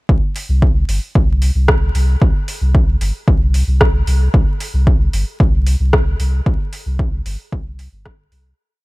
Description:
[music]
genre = dub techno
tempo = 113 BPM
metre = 4/4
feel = straight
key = unclear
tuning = A4 = 439 Hz
[part]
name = pure sine sub bass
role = bass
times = 0.1-8.5 s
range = G1 to C2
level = -16 LUFS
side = equal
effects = sidechain pumping
[part]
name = electronic kick drum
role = drums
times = 0.1-8.2 s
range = none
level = -14 LUFS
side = equal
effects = none
[part]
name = deep house drum kit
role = drums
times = 0.4-8.4 s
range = hi-hat, rim click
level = -22 LUFS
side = equal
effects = overdrive
[sound]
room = little or no reverb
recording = vinyl crackle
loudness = -13 LUFS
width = side -21 dB against mid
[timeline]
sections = 0.1-8.6 groove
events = fade-out 5.8-8.6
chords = none

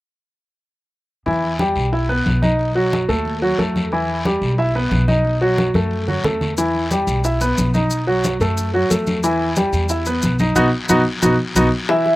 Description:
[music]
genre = latin, salsa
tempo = 181 BPM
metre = 4/4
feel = straight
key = E minor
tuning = A4 = 440 Hz
[part]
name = clear baby grand piano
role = accompaniment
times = 1.3-12.2 s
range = E3 to E5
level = -18 LUFS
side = equal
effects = slapback echo
[part]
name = upright bass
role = bass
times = 1.3-11.7 s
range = B1 to F#2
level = -22 LUFS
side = equal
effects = none
[part]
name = congas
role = percussion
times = 1.3-12.2 s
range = none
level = -22 LUFS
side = equal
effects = none
[part]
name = guiro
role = percussion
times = 1.3-12.2 s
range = none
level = -31 LUFS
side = left 3 dB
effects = none
[part]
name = maracas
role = percussion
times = 6.6-11.6 s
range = none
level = -27 LUFS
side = left 3 dB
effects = none
[part]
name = vibraphone with soft mallets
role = melody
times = 11.9-12.2 s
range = E5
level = -15 LUFS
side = equal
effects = none
[part]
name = bongos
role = percussion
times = 11.9-12.2 s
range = none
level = -23 LUFS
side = left 5 dB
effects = slapback echo
[sound]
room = little or no reverb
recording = recorded outdoors, with no room sound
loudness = -16 LUFS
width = side -17 dB against mid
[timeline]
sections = 1.3-11.9 A section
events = drum fill 5.7-6.6, 11.4-11.9; band accent 10.6-11.9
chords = 1.3 Em; 2.6 B7; 3.9 Em; 5.2 B7; 6.6 Em; 7.9 B7; 9.2 Em; 10.6 B

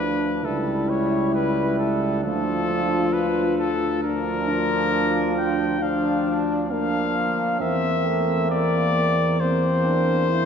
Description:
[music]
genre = classical, brass quintet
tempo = 67 BPM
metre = 4/4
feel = straight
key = unclear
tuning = A4 = 440 Hz
[part]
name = warm trumpet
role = melody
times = 0.0-10.5 s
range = A4 to G5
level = -25 LUFS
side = left 4 dB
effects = none
[part]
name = mellow flugelhorn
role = second line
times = 0.0-10.5 s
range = C4 to E4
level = -29 LUFS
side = right 4 dB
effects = none
[part]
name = bright trombone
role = accompaniment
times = 0.0-10.5 s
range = F3 to Bb3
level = -28 LUFS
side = right 4 dB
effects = none
[part]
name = clear French horn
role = accompaniment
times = 0.0-10.5 s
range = A3 to F4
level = -27 LUFS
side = left 3 dB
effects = none
[part]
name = mellow tuba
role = bass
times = 0.0-10.5 s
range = C#2 to E2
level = -26 LUFS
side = right 1 dB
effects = none
[sound]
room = wet church reverb, RT60 3.3 s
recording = nothing above 7.9 kHz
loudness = -20 LUFS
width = side -7 dB against mid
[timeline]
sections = 0.0-10.5 A section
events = none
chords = 0.4 C#m7b5; 2.2 Dm; 7.6 C7/E

